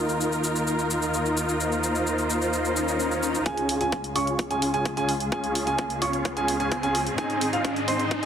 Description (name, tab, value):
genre	EDM, festival progressive house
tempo	129 BPM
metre	4/4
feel	straight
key	unclear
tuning	A4 = 440 Hz
part	dark studio string section	sustained chords	0.0-8.3 s	Db2 to Eb5	-30 LUFS	left 1 dB	sidechain pumping, low-pass filter
part	supersaw chords	riff	0.0-8.3 s	C4 to Db5	-26 LUFS	equal	sidechain pumping, low-pass filter, tape echo
part	electronic cabasa and hi-hat	drums	0.1-8.3 s	none	-32 LUFS	left 1 dB	overdrive, high-pass filter on perc, high-pass filter on hats
part	swell and riser	sound effects	2.7-8.3 s	none	-33 LUFS	left 2 dB	none
part	clear grand piano	arpeggios	3.5-8.3 s	F5 to Db6	-28 LUFS	right 2 dB	sidechain pumping, low-pass filter, tape echo
part	electronic kick drum	drums	3.5-8.2 s	none	-30 LUFS	left 1 dB	overdrive, high-pass filter on kick
room	moderate lush hall reverb, RT60 2.4 s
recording	dense, heavily limited modern master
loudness	-23 LUFS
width	side -8 dB against mid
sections	0.0-3.5 A section; 3.5-8.3 B section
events	swell 2.7-3.5; build-up 3.5-8.3; riser 3.5-8.3; filter sweep on supersaw synth 3.5-8.3; filter sweep on grand piano 3.5-8.3; filter sweep on string section 3.5-8.3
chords	0.0 Ebsus2; 3.5 Db; 7.2 Ab